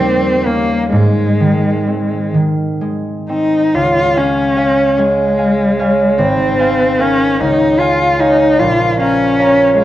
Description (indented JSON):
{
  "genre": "classical, romantic duo for cello and harp",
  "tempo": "42-53 BPM (dotted quarters)",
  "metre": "6/8",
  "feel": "rubato",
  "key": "Ab major, Db major from 3.8 s",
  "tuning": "A4 = 440 Hz",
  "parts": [
    { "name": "rich cello", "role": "melody", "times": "0.0-9.8 s", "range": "Ab3 to F4", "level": "-14 LUFS", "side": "left 1 dB", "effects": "none" },
    { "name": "concert harp", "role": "accompaniment", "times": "0.0-9.8 s", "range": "Ab1 to Bb5", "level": "-14 LUFS", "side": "right 1 dB", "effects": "none" }
  ],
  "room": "wet recital hall reverb, RT60 1.4 s",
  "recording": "worn, warbling old tape, cassette tape, warbly pitch drift",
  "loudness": "-11 LUFS",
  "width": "side -13 dB against mid",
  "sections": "0.0-3.8 A section; 3.8-9.8 B section",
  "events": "none",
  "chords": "0.0 Eb7; 0.9 Ab; 3.8 Db; 6.2 Ab69; 7.4 Db; 8.6 Bbm"
}